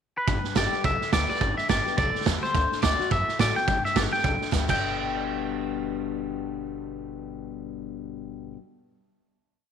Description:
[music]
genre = rockabilly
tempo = 212 BPM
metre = 4/4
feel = swing 59% on 8ths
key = G major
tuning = A4 = 439 Hz
[part]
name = twangy electric guitar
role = melody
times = 0.2-8.5 s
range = B4 to G5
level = -26 LUFS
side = left 1 dB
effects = phaser, tape echo
[part]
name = picked steel-string acoustic guitar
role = accompaniment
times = 0.3-8.6 s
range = G2 to G4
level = -31 LUFS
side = left 10 dB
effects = none
[part]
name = upright bass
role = bass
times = 0.3-8.5 s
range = G1 to A2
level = -32 LUFS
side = equal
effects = none
[part]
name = vintage drum kit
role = drums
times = 0.3-4.7 s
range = crash cymbal, hi-hat, kick drum, snare drum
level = -27 LUFS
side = right 6 dB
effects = none
[sound]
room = light reverb, studio ambience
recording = 1960s-style stereo with parts hard left and right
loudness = -23 LUFS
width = side -8 dB against mid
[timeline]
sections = 0.0-0.3 pickup bar; 0.3-4.8 A section; 4.8-7.1 final hit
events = drum fill 4.5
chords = 0.3 G; 2.5 D7; 3.7 G

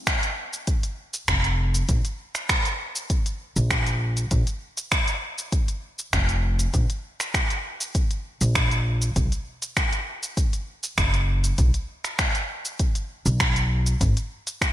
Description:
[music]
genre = organic downtempo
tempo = 99 BPM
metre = 4/4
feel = straight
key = unclear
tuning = A4 = 440 Hz
[part]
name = electronic kick drum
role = drums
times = 0.1-14.7 s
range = none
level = -24 LUFS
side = equal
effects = studio reverb
[part]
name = organic electronic drum kit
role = drums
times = 0.1-14.7 s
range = cabasa, finger snaps, hi-hat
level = -26 LUFS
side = equal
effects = studio reverb, gated reverb
[part]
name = upright bass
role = bass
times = 1.3-14.1 s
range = F1 to B1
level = -22 LUFS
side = equal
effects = tube saturation
[sound]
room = light reverb, digital ambience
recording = bright 1980s-style digital production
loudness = -22 LUFS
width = side -13 dB against mid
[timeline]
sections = 0.0-14.7 A section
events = none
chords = none

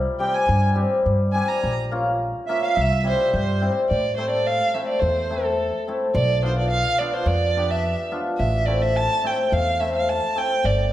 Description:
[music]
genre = klezmer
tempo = 106 BPM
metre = 4/4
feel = straight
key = C phrygian dominant, A minor from 3.9 s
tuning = A4 = 440 Hz
[part]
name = cimbalom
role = accompaniment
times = 0.0-10.5 s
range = G3 to G4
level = -24 LUFS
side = left 2 dB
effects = none
[part]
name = upright bass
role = bass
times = 0.0-10.9 s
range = G1 to A2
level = -24 LUFS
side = equal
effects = none
[part]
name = dark violin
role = melody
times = 0.2-10.9 s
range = A4 to Bb5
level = -23 LUFS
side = right 2 dB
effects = none
[part]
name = accordion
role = second line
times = 0.2-3.7 s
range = C5 to Ab5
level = -29 LUFS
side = right 5 dB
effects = light tremolo tuning
[sound]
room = wet recital hall reverb, RT60 1.6 s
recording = none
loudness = -19 LUFS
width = side -13 dB against mid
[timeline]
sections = 0.0-3.9 A section; 3.9-10.9 B section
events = none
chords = 0.0 C5; 1.6 Bbm; 2.8 C; 3.9 Am; 6.2 Bdim; 8.4 Am

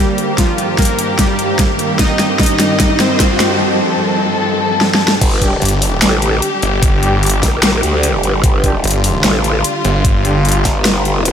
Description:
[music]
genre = heavy wobble dubstep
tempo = 149 BPM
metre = 4/4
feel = swing 54% on 16ths, half-time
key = G minor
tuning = A4 = 437 Hz
[part]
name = soft supersaw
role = melody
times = 0.0-3.5 s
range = F3 to Eb5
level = -20 LUFS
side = right 1 dB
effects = cassette tape, ping-pong delay
[part]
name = dark studio string section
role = sustained chords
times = 0.0-11.3 s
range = G2 to A4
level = -18 LUFS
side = left 1 dB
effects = sidechain pumping
[part]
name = riser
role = sound effects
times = 1.7-3.6 s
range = none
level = -24 LUFS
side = right 1 dB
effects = none
[part]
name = granular cloud pad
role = texture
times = 0.0-11.3 s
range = G3 to Bb5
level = -25 LUFS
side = right 1 dB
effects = built-in reverb, lush chorus, sidechain pumping
[part]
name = dubstep drum kit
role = drums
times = 0.2-11.3 s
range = crash cymbal, hi-hat, snare drum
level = -17 LUFS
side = equal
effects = small room ambience
[part]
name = electronic kick drum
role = drums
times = 0.4-10.7 s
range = none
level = -15 LUFS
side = equal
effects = small room ambience
[part]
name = growl bass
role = bass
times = 5.2-11.3 s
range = G1 to D2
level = -15 LUFS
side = equal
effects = chorus, overdrive
[part]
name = dark brass ensemble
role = stabs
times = 5.4-10.4 s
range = G3 to G4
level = -26 LUFS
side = right 1 dB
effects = none
[part]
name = snarling distorted saw bass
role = bass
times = 5.6-10.6 s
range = G1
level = -15 LUFS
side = equal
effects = distortion, overdrive
[sound]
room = moderate huge ambient reverb, RT60 7.9 s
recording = dreamy mix soaked in reverb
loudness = -11 LUFS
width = side -8 dB against mid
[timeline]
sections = 0.0-5.2 A section; 5.2-11.3 B section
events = build-up 0.0-5.2; drum fill 0.0-3.6, 4.8-5.2; drop 5.2-11.3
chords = 0.4 Eb/G; 2.0 Cm/G; 3.6 F/G; 5.2 G5

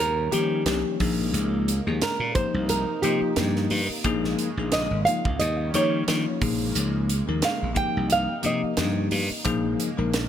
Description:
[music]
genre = electric jazz fusion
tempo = 89 BPM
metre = 4/4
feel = swing 56% on 16ths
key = Bb dorian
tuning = A4 = 440 Hz
[part]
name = nylon-string guitar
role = melody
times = 0.0-9.1 s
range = G4 to G5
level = -26 LUFS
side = right 2 dB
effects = tape echo
[part]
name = brassy analog pad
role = sustained chords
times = 0.0-10.3 s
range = C3 to Eb4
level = -34 LUFS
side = right 3 dB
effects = chorus
[part]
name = slap bass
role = bass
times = 0.0-10.3 s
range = Ab1 to Eb3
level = -27 LUFS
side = equal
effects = none
[part]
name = bell-like tine electric piano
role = accompaniment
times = 0.3-10.2 s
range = F3 to Bb4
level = -28 LUFS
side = left 6 dB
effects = none
[part]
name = crisp fusion drum kit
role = drums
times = 0.3-10.3 s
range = hi-hat, kick drum, snare drum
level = -29 LUFS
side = right 2 dB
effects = none
[sound]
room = light reverb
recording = none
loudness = -22 LUFS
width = side -10 dB against mid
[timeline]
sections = 0.0-10.3 A section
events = nylon-string guitar solo 0.0-10.3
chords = 0.0 Eb13; 1.0 Bbm7; 2.4 Cm7; 4.0 Bbm7; 5.4 Eb9; 6.4 Bbm7; 7.8 Cm7; 9.5 Bbm7

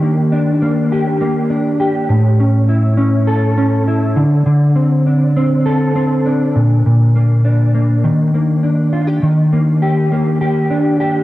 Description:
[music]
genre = indie pop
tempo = 101 BPM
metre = 4/4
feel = straight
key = Eb lydian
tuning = A4 = 439 Hz
[part]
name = mellow electric guitar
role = solo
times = 0.0-11.2 s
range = A2 to A4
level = -12 LUFS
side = equal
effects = ensemble chorus, vibrato effect, dub echo
[sound]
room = light reverb, digital ambience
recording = echo-heavy mix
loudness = -12 LUFS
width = side -16 dB against mid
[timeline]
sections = 0.0-9.2 A section; 9.2-11.2 B section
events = none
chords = 0.0 Ebmaj7; 2.1 A; 4.2 D5; 6.5 Bb; 8.0 Ebmaj7

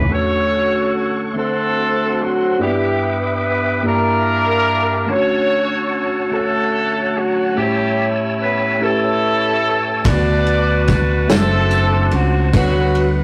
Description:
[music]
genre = slow gospel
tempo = 48 BPM (dotted quarters)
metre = 6/8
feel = straight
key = D major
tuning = A4 = 440 Hz
[part]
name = warm horn section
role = melody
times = 0.0-13.2 s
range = F#3 to D5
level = -20 LUFS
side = equal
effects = none
[part]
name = mellow tine electric piano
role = accompaniment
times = 0.0-13.2 s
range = G2 to D5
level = -24 LUFS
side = equal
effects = phaser
[part]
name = bright tonewheel organ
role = sustained chords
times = 0.0-13.2 s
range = A4 to E6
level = -29 LUFS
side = equal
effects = slow rotary speaker, chorus vibrato
[part]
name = fingered electric bass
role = bass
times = 0.0-0.1, 10.1-13.2 s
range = F#1 to D2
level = -19 LUFS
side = equal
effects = none
[part]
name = tambourine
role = percussion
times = 10.0-12.9 s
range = none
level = -40 LUFS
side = equal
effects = none
[part]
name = modern studio drum kit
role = drums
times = 10.1-13.1 s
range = kick drum, ride cymbal, snare drum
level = -23 LUFS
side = equal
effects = none
[sound]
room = wet studio ambience, RT60 0.5 s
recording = rough rehearsal-room recording, warm saturation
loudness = -17 LUFS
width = mono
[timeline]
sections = 0.1-13.2 A section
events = none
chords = 0.1 Dmaj7; 1.3 D7; 2.6 G6; 3.8 Gm6; 5.1 Dmaj7; 7.6 A7; 10.1 D6; 11.3 D7/F#; 12.5 Gmaj7/D

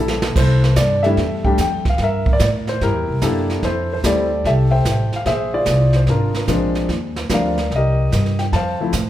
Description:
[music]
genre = jazz piano trio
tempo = 147 BPM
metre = 4/4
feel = swing 67% on 8ths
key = C major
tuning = A4 = 440 Hz
[part]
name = warm concert grand piano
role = melody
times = 0.0-9.1 s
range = F3 to A5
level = -19 LUFS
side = left 1 dB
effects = none
[part]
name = upright bass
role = bass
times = 0.0-9.1 s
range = Ab1 to A2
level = -19 LUFS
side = equal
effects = none
[part]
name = jazz brush drum kit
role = drums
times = 0.1-9.1 s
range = brushed snare drum, crash cymbal, hi-hat, kick drum, snare drum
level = -23 LUFS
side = right 2 dB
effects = none
[sound]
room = moderate recital hall reverb, RT60 1.5 s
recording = recorded in a church or concert hall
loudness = -15 LUFS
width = side -12 dB against mid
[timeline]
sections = 0.4-9.1 A section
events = drum fill 0.0-0.4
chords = 0.4 C6; 2.0 Gm; 2.8 C7; 3.6 Fmaj9; 5.3 Bb9; 6.9 Ebmaj13; 8.5 F

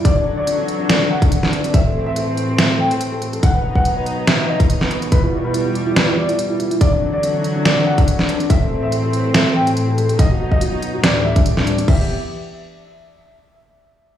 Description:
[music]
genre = heavy wobble dubstep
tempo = 142 BPM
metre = 4/4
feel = swing 54% on 16ths, half-time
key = E minor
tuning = A4 = 440 Hz
[part]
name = dark baby grand piano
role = melody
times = 0.0-12.0 s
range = D4 to G5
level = -21 LUFS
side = left 1 dB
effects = dub echo
[part]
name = dark studio string section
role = sustained chords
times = 0.0-12.1 s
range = D2 to G4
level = -21 LUFS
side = equal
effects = sidechain pumping
[part]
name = electronic kick drum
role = drums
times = 0.0-12.0 s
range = none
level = -15 LUFS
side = equal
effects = none
[part]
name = dubstep drum kit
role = drums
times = 0.1-12.0 s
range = crash cymbal, hi-hat, snare drum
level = -20 LUFS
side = equal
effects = none
[sound]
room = moderate digital room reverb, RT60 0.9 s, digital ambience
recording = played on a big sound system in a bare room, large studio reverb, studio reverb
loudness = -14 LUFS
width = side -10 dB against mid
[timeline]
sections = 0.0-11.9 A section; 11.9-13.6 B section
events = none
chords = 0.1 Dadd9; 1.7 Am; 3.4 B; 5.1 Em; 6.8 Dadd9; 8.5 Am; 10.2 B; 11.0 Dsus4; 11.9 Em

